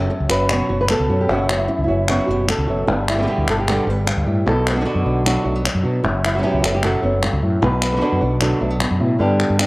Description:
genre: flamenco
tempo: 152 BPM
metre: 4/4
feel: straight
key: B minor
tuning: A4 = 444 Hz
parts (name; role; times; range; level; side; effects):
- flamenco guitar; melody; 0.0-9.7 s; F#2 to C#5; -20 LUFS; equal; cassette tape
- flamenco guitar; stabs; 0.0-8.8 s; B2 to G4; -23 LUFS; right 2 dB; cassette tape
- mellow fretless electric bass; bass; 0.0-9.7 s; F#1 to B2; -21 LUFS; equal; none
- palmas hand claps; percussion; 0.3-9.7 s; none; -24 LUFS; left 2 dB; none
room: moderate spring reverb, RT60 2.3 s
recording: home recording on cassette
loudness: -16 LUFS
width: side -22 dB against mid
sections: 0.0-9.2 A section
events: none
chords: 0.0 F#sus4; 2.9 G; 4.5 Bm; 6.0 F#sus4; 7.6 Bm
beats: 0.11 0.50 0.90 | 1.30 1.69 2.09 2.48 | 2.88 3.28 3.67 4.07 | 4.46 4.86 5.25 5.65 | 6.04 6.44 6.83 7.23 | 7.62 8.02 8.41 8.81 | 9.20 9.60

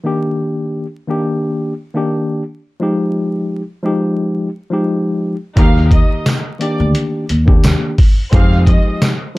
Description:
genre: hip hop, boom-bap hip-hop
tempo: 87 BPM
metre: 4/4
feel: swing 55% on 16ths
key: Eb major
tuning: A4 = 440 Hz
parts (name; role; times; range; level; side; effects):
- mellow tine electric piano; accompaniment; 0.0-9.4 s; Eb3 to G4; -17 LUFS; left 1 dB; medium stereo tremolo, cassette tape, high-pass filter, low-pass filter
- warm studio violin section; melody; 5.6-9.0 s; D5 to F6; -25 LUFS; right 1 dB; high-pass filter, low-pass filter, ping-pong delay
- warm studio string section; stabs; 5.6-8.6 s; C4 to C5; -28 LUFS; left 1 dB; high-pass filter, low-pass filter, ping-pong delay
- upright bass; bass; 5.6-8.8 s; D2 to F2; -14 LUFS; equal; none
- trip hop sampler-style drum kit; drums; 5.6-9.2 s; hi-hat, kick drum, snare drum; -12 LUFS; equal; none
- tambourine; percussion; 6.3-9.2 s; none; -32 LUFS; right 3 dB; none
room: light reverb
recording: dark, warm production, vinyl crackle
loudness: -13 LUFS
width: side -20 dB against mid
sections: 0.0-9.4 A section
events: none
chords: 0.0 Ebmaj7; 2.8 Fm9; 5.6 Ebmaj7; 8.3 Fm9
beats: | 0.05 0.74 1.43 2.12 | 2.81 3.50 4.19 4.88 | 5.57 6.26 6.95 7.64 | 8.32 9.02

